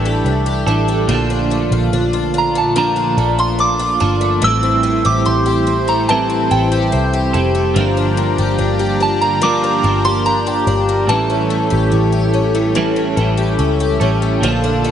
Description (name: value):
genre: dream pop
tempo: 72 BPM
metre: 4/4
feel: straight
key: unclear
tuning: A4 = 440 Hz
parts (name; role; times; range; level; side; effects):
- soft synth bell; melody; 0.0-14.0 s; G5 to E6; -18 LUFS; right 1 dB; chorus, digital delay
- clean electric guitar; accompaniment; 0.0-14.9 s; G2 to Bb4; -20 LUFS; right 5 dB; tremolo, analog chorus
- phased analog pad; sustained chords; 0.0-14.9 s; E4 to Bb5; -22 LUFS; right 1 dB; phaser, chorus
- picked twelve-string acoustic guitar; arpeggios; 0.0-14.9 s; E3 to G4; -20 LUFS; left 5 dB; analog chorus, digital delay
- vintage muted picked electric bass; bass; 0.0-14.9 s; F1 to C#2; -19 LUFS; equal; none
room: moderate huge ambient reverb, RT60 4.5 s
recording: nothing above 10.9 kHz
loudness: -13 LUFS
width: side -9 dB against mid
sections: 0.0-1.1 A section; 1.1-14.9 B section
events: none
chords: 0.0 A7sus4; 1.1 Bbmaj7; 4.4 Am7; 7.8 Gm7; 11.1 A7